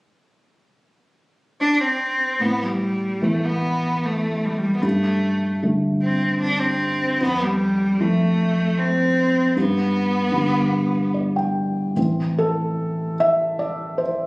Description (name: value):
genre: celtic folk, Celtic slow air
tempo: 76 BPM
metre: 3/4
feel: rubato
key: A minor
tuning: A4 = 440 Hz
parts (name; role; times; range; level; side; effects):
- rich cello; melody; 1.6-11.2 s; G3 to D4; -21 LUFS; equal; none
- felt-muted upright piano; accompaniment; 2.4-14.3 s; F2 to G5; -20 LUFS; equal; none
room: moderate recital hall reverb, RT60 1.6 s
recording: recorded on a phone in the room, studio reverb, compression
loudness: -18 LUFS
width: side -28 dB against mid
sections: 0.0-2.4 A section; 2.4-12.0 B section; 12.0-14.3 C section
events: felt piano fill 10.7-12.0; felt piano solo 12.0-14.3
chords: 0.0 N.C.; 2.4 Asus2; 4.8 Gsus2; 7.2 F; 9.6 G; 12.0 Am